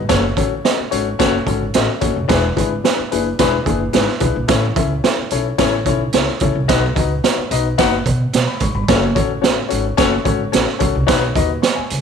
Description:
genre	uptempo 1960s-style soul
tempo	109 BPM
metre	4/4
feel	straight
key	unclear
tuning	A4 = 443 Hz
part	upright bass	bass	0.0-12.0 s	E1 to B2	-21 LUFS	equal	none
part	dark baby grand piano	accompaniment	0.1-12.0 s	C#4 to C#6	-19 LUFS	left 12 dB	none
part	raw garage drum kit	drums	0.1-12.0 s	hi-hat, kick drum, snare drum	-18 LUFS	right 6 dB	none
room	moderate plate reverb, RT60 1.2 s, studio reverb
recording	1960s-style stereo with parts hard left and right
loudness	-14 LUFS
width	side -7 dB against mid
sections	0.0-12.0 A section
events	none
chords	0.1 F#m; 2.3 E7; 4.5 A; 6.7 B; 8.9 F#m; 11.1 Badd9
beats	| 0.10 0.65 1.20 1.75 | 2.30 2.85 3.40 3.95 | 4.50 5.05 5.59 6.14 | 6.69 7.24 7.79 8.34 | 8.89 9.44 9.99 10.54 | 11.08 11.63

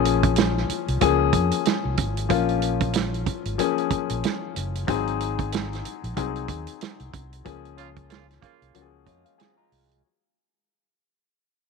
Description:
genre	lush 1970s-style soul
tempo	93 BPM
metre	4/4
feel	swing 58% on 16ths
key	Bb minor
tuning	A4 = 439 Hz
part	warm concert grand piano	accompaniment	0.0-10.1 s	F3 to Bb5	-25 LUFS	left 14 dB	none
part	fingered electric bass	bass	0.0-10.0 s	Gb1 to F2	-28 LUFS	equal	none
part	warm soul drum kit	drums	0.1-10.0 s	hi-hat, kick drum, snare drum	-26 LUFS	right 7 dB	none
part	clear horn section	stabs	7.8-8.9 s	Db3 to F4	-48 LUFS	right 3 dB	tape echo
part	electric guitar through a small old amp	riff	9.1-10.0 s	Ab3 to Ab4	-51 LUFS	left 4 dB	none
room	light reverb, small room reverb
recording	1960s-style stereo with parts hard left and right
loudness	-22 LUFS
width	side -4 dB against mid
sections	0.0-10.0 A section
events	fade-out 0.0-10.0; band accent 7.5-10.0; grand piano fill 8.7-10.0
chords	0.0 Bbm7; 4.9 Ab7; 7.5 Db6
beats	0.37 1.01 1.66 | 2.30 2.95 3.59 4.24 | 4.88 5.52 6.17 6.81 | 7.46 8.10 8.75 9.39

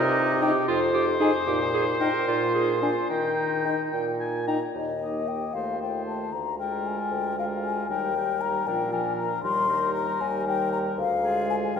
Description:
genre	quick classical-period movement for wind quintet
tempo	76 BPM (dotted quarters)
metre	6/8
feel	straight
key	Eb major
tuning	A4 = 440 Hz
part	clear oboe	second line	0.0-11.8 s	Ab4 to Bb5	-32 LUFS	left 2 dB	none
part	bright clarinet	accompaniment	0.0-11.8 s	D4 to Bb4	-30 LUFS	right 3 dB	none
part	mellow bassoon	bass	0.0-11.8 s	D2 to Eb3	-29 LUFS	right 1 dB	none
part	mellow hollow concert flute	melody	0.4-11.8 s	Eb5 to C6	-28 LUFS	left 6 dB	none
part	warm French horn	accompaniment	0.4-11.8 s	F3 to Eb4	-32 LUFS	left 1 dB	none
room	wet church reverb, RT60 3.0 s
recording	recorded in a church or concert hall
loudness	-23 LUFS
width	side -6 dB against mid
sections	0.0-4.8 A section; 4.8-11.8 A section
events	none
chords	0.0 Cm; 0.7 Fm; 1.5 Eb/Bb (rootless); 2.3 Bb7(no3); 3.1 Eb; 5.5 F7/Eb; 6.3 Bb7/D; 7.9 Eb; 8.7 Bb; 9.4 Eb; 11.0 Ddim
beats	0.68 | 1.47 2.27 | 3.09 3.93 | 4.75 5.55 | 6.33 7.12 | 7.89 8.66 | 9.43 10.20 | 10.98 11.76

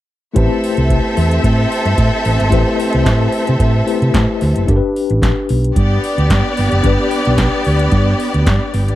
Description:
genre	disco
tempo	111 BPM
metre	4/4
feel	straight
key	A minor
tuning	A4 = 440 Hz
part	tine electric piano	accompaniment	0.3-9.0 s	A3 to C5	-19 LUFS	left 5 dB	medium stereo tremolo
part	clear studio string section	second line	0.4-9.0 s	B3 to E5	-18 LUFS	right 1 dB	none
part	hollow-body short-scale fingered electric bass	bass	0.4-9.0 s	F#1 to C3	-14 LUFS	right 1 dB	none
part	electro analog drum machine	drums	0.4-9.0 s	handclaps, hi-hat, kick drum, snare drum	-18 LUFS	equal	none
room	little or no reverb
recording	dry, close 1970s-style studio recording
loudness	-12 LUFS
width	side -14 dB against mid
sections	0.4-9.0 A section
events	none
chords	0.4 Am7; 4.7 G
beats	| 0.36 0.90 1.44 1.98 | 2.52 3.06 3.60 4.14 | 4.68 5.22 5.76 6.30 | 6.84 7.39 7.93 8.47

